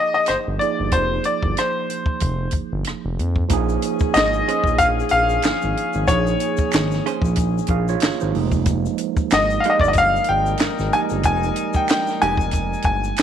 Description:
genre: R&B, neo-soul.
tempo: 93 BPM.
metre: 4/4.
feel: swing 57% on 16ths.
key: Bb dorian.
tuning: A4 = 438 Hz.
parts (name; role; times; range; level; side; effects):
bright grand piano; melody; 0.0-13.2 s; C5 to Ab5; -19 LUFS; left 2 dB; none.
overdriven tine electric piano; accompaniment; 0.0-13.2 s; F3 to F5; -26 LUFS; right 14 dB; phaser.
smooth gliding synth bass; bass; 0.3-13.2 s; F1 to F2; -23 LUFS; equal; none.
compact cocktail drum kit; drums; 0.3-13.2 s; handclaps, hi-hat, kick drum, rim click, snare drum; -22 LUFS; equal; none.
dark horn section; stabs; 3.5-13.1 s; F3 to Bb4; -29 LUFS; left 12 dB; none.
tube shaker and finger snaps; percussion; 3.5-13.2 s; none; -34 LUFS; right 5 dB; none.
hollow-body jazz guitar; second line; 4.5-12.4 s; Ab3 to C5; -29 LUFS; right 13 dB; none.
room: light reverb, small room ambience.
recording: 1960s-style stereo with parts hard left and right.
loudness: -17 LUFS.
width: side -9 dB against mid.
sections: 0.0-3.5 A section; 3.5-13.2 B section.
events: none.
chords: 0.0 Fm9; 3.5 Bbm7; 8.3 Fm9.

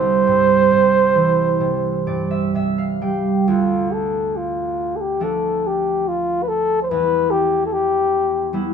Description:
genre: celtic folk, Celtic slow air.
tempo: 62-75 BPM.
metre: 4/4.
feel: rubato.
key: D dorian.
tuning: A4 = 439 Hz.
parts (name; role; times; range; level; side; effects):
dark flugelhorn; melody; 0.0-8.5 s; F4 to C5; -18 LUFS; right 1 dB; none.
concert harp; accompaniment; 0.0-8.7 s; C2 to G5; -21 LUFS; right 3 dB; none.
room: moderate studio reverb, RT60 0.5 s.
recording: band playing live in one room.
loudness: -16 LUFS.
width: side -7 dB against mid.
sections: 0.0-3.5 A section; 3.5-8.7 B section.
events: harp fill 1.6-3.5.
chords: 0.0 C; 3.5 Dm; 6.9 Em.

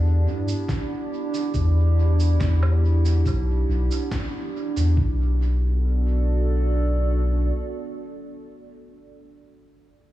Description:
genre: ambient dub.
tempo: 70 BPM.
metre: 4/4.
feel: straight.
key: B minor.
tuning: A4 = 441 Hz.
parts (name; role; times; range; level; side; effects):
warbly tape-like pad; sustained chords; 0.0-9.2 s; B3 to D5; -29 LUFS; right 3 dB; chorus, built-in reverb.
soft dub sub bass; bass; 0.0-7.5 s; B1 to G2; -19 LUFS; equal; none.
electronic cabasa, snare drum and woodblock; drums; 0.5-4.9 s; none; -36 LUFS; right 2 dB; dub echo.
electronic kick drum; drums; 0.7-5.2 s; none; -26 LUFS; equal; none.
room: digital ambience.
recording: studio reverb, faint mains hum.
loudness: -20 LUFS.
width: side -15 dB against mid.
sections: 0.0-5.0 A section; 5.0-8.4 B section.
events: band accent 4.1-4.5.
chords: 0.0 Em7; 5.0 Bm7.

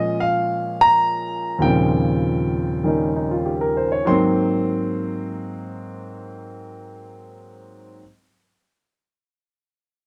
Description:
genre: solo jazz.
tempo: 98 BPM.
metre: 4/4.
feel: swing 69% on 8ths.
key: Ab major.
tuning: A4 = 440 Hz.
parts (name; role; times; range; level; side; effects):
warm concert grand piano; solo; 0.0-8.0 s; Eb2 to C6; -21 LUFS; equal; none.
room: light reverb.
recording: dark, warm production.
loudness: -20 LUFS.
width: mono.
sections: 0.0-4.1 A section; 4.1-6.5 B section.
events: none.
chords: 0.0 Bbm7; 1.6 Eb13; 4.1 Ab9.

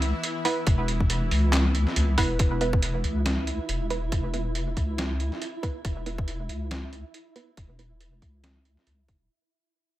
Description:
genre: deep dubstep.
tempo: 139 BPM.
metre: 4/4.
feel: swing 56% on 16ths, half-time.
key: unclear.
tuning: A4 = 438 Hz.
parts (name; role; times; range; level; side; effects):
bowed-like drone; sustained chords; 0.0-2.4 s; E3 to E4; -35 LUFS; left 1 dB; built-in reverb.
deep soft wobble bass; bass; 0.0-9.3 s; E1 to C#2; -26 LUFS; equal; chorus.
trip hop sampler-style drum kit; drums; 0.0-9.2 s; handclaps, hi-hat, snare drum; -30 LUFS; right 1 dB; overdrive.
filtered dub chord stab; stabs; 0.5-9.3 s; B3 to B4; -32 LUFS; right 3 dB; chorus, dub echo.
electronic kick drum; drums; 0.7-9.2 s; none; -25 LUFS; equal; none.
flickering grainy texture; texture; 2.9-9.3 s; E4; -38 LUFS; right 2 dB; built-in reverb.
room: little or no reverb.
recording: none.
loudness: -24 LUFS.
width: side -15 dB against mid.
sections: 0.0-2.4 A section; 2.4-9.3 B section.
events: drop 0.0-2.4; fade-out 2.4-9.3; filter sweep on synth stab 2.4-9.3.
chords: 0.0 E5.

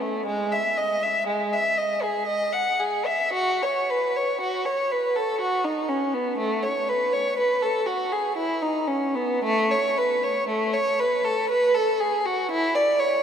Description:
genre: classical, baroque-style suite movement for unaccompanied violin.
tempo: 59 BPM.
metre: 3/4.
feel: uneven beats, rubato.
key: A major from 9.4 s.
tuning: A4 = 439 Hz.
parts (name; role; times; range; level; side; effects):
rich violin; solo; 0.0-13.2 s; G#3 to F#5; -22 LUFS; equal; none.
room: wet cathedral reverb, RT60 5.2 s.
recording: none.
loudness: -22 LUFS.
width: side -8 dB against mid.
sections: 0.0-13.2 A section.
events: none.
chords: none.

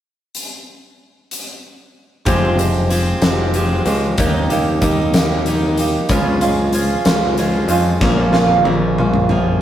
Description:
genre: quiet-loud alternative rock.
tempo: 63 BPM (dotted quarters).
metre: 6/8.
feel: straight.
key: F minor.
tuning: A4 = 442 Hz.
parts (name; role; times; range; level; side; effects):
huge arena drum kit; drums; 0.3-9.4 s; hi-hat, kick drum, snare drum, toms; -18 LUFS; left 1 dB; none.
picked swing-style acoustic guitar; arpeggios; 2.3-9.6 s; F2 to G4; -18 LUFS; right 2 dB; none.
modern bright picked electric bass; bass; 2.3-9.6 s; F1 to F2; -18 LUFS; left 1 dB; none.
room: light reverb.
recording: rough rehearsal-room recording.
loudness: -14 LUFS.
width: side -11 dB against mid.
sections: 0.3-2.3 A section; 2.3-9.6 B section.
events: drum fill 8.0-9.6.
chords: 0.3 N.C.; 2.3 Fmadd9; 4.2 Eb; 6.1 Db; 8.0 Bbm.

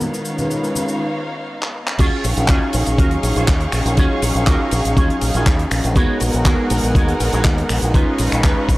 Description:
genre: nu-disco, nu disco.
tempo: 121 BPM.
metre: 4/4.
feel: straight.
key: Eb minor.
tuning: A4 = 437 Hz.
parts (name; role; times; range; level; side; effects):
rich symphonic violin section; sustained chords; 0.0-8.8 s; Cb4 to Db6; -28 LUFS; equal; sidechain pumping.
tight funk drum kit; drums; 0.0-8.8 s; cabasa, crash cymbal, finger snaps, handclaps, hi-hat, ride cymbal; -24 LUFS; equal; none.
tube shaker, congas and bongos; percussion; 0.0-1.0 s; none; -28 LUFS; left 2 dB; none.
warm analog pad; accompaniment; 0.2-8.8 s; Eb3 to F5; -22 LUFS; equal; chorus, sidechain pumping, tape echo.
electric guitar with an envelope filter; riff; 2.0-8.7 s; Cb4 to Cb5; -24 LUFS; right 2 dB; ensemble chorus, tape echo.
fingered electric bass with an envelope filter; bass; 2.0-8.8 s; Bb1 to Eb2; -20 LUFS; equal; tube saturation.
electronic kick drum; drums; 2.0-8.8 s; none; -16 LUFS; equal; none.
room: small room ambience.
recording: dry, gritty hardware recording.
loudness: -15 LUFS.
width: side -19 dB against mid.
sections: 0.0-2.0 A section; 2.0-8.8 B section.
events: break 1.0-2.0; drum fill 1.6-2.0; drop 2.0-8.8.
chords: 0.0 Db9/Eb; 2.0 Ebm11.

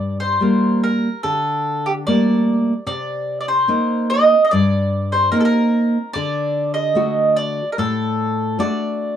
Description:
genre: fado.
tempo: 73 BPM.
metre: 4/4.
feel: rubato.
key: G harmonic minor.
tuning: A4 = 440 Hz.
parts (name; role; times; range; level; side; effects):
mandolin; melody; 0.0-9.2 s; G4 to Eb5; -19 LUFS; right 1 dB; none.
nylon-string guitar; accompaniment; 0.0-9.2 s; G2 to F#4; -19 LUFS; equal; none.
room: moderate small room ambience, RT60 0.5 s.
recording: dark, warm production.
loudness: -16 LUFS.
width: side -9 dB against mid.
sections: 0.0-9.2 A section.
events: none.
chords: 0.0 Gmadd9; 2.9 Cm7; 6.1 D.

